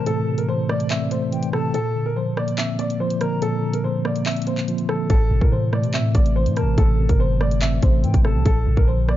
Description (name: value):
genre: hip hop, drill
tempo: 143 BPM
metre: 4/4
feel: half-time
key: A phrygian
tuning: A4 = 439 Hz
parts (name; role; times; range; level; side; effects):
- warm grand piano; melody; 0.0-9.2 s; A4 to E5; -26 LUFS; left 1 dB; tape echo
- breathy mellow silver concert flute; second line; 0.0-3.4, 6.6-8.4 s; G5 to Bb5; -38 LUFS; left 3 dB; tape echo
- mellow tine electric piano; accompaniment; 0.0-9.2 s; A2 to C4; -22 LUFS; equal; medium stereo tremolo
- drill drum kit; drums; 0.1-9.2 s; handclaps, hi-hat, kick drum, rim click; -21 LUFS; equal; none
- long sustained 808-style bass; bass; 5.1-9.2 s; G1 to C3; -20 LUFS; equal; none
room: digital ambience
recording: dark, warm production, nothing above 7.5 kHz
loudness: -18 LUFS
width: side -13 dB against mid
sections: 0.0-9.2 A section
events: break 0.0-5.1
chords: 0.0 Am; 1.7 Bbadd9; 5.1 Am; 8.5 Bbadd9